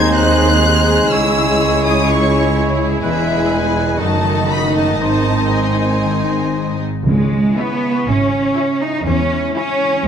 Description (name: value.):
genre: classical, dramatic, fast romantic movement for symphony orchestra.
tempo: 115-126 BPM.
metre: 4/4.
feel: rubato.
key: C# minor.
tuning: A4 = 439 Hz.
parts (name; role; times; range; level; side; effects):
warm symphonic violin section; melody; 0.0-9.9 s; E5 to G#6; -21 LUFS; left 3 dB; none.
clear clarinet; second line; 0.0-6.8 s; D#4 to E4; -25 LUFS; equal; none.
mellow oboe; second line; 0.0-6.8 s; B4 to D#5; -24 LUFS; right 3 dB; none.
warm symphonic violin section; second line; 0.0-9.9 s; D#4 to E5; -23 LUFS; left 1 dB; none.
mellow bassoon; accompaniment; 0.0-6.8 s; D#3 to G#3; -22 LUFS; right 2 dB; none.
rich symphonic viola section; accompaniment; 0.0-9.9 s; G#3 to E4; -24 LUFS; right 2 dB; none.
mellow French horn section; sustained chords; 0.0-6.8 s; D#3 to E4; -22 LUFS; left 5 dB; none.
concert harp; arpeggios; 0.0-10.1 s; E2 to C#6; -24 LUFS; left 10 dB; none.
clear symphonic double bass section; bass; 0.0-10.1 s; E1 to E2; -20 LUFS; right 3 dB; none.
rich symphonic cello section; bass; 0.0-10.1 s; C#2 to D#4; -20 LUFS; right 2 dB; none.
timpani; percussion; 7.1-7.8 s; C#3; -21 LUFS; right 1 dB; none.
room: moderate scoring stage reverb, RT60 1.9 s.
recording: none.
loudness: -13 LUFS.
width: side -8 dB against mid.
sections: 0.0-7.1 A section; 7.1-10.1 B section.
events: none.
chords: 0.0 G#7/D#; 1.1 C#m; 3.0 E; 4.0 D#dim/F#; 5.0 G#; 7.1 C#m; 9.1 C#m/E.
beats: 0.16 0.64 | 1.12 1.60 2.08 2.56 | 3.04 3.52 4.00 4.50 | 5.01 5.53 6.04 6.56 | 7.07 7.58 8.07 8.57 | 9.07 9.56 10.06.